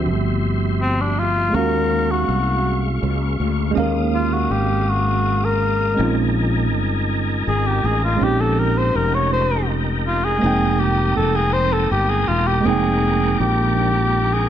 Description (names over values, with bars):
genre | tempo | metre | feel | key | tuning
slow six-eight R&B | 54 BPM (dotted quarters) | 6/8 | straight | unclear | A4 = 436 Hz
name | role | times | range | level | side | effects
tine electric piano | accompaniment | 0.0-14.5 s | F3 to G5 | -23 LUFS | right 4 dB | slow stereo tremolo
tonewheel organ | sustained chords | 0.0-14.5 s | Ab3 to Eb6 | -28 LUFS | left 1 dB | chorus vibrato, fast rotary speaker
sustaining fretless electric bass | bass | 0.0-14.5 s | E1 to Eb2 | -21 LUFS | left 1 dB | ensemble chorus
dark cor anglais | melody | 0.8-14.5 s | C4 to Db5 | -21 LUFS | left 2 dB | slapback echo
room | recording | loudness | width
light reverb | none | -16 LUFS | side -10 dB against mid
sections
0.0-14.5 A section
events
cor anglais solo 0.0-14.5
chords
0.0 Dm11 (rootless); 1.5 Ebm11; 6.0 Bbm11; 10.4 Fm11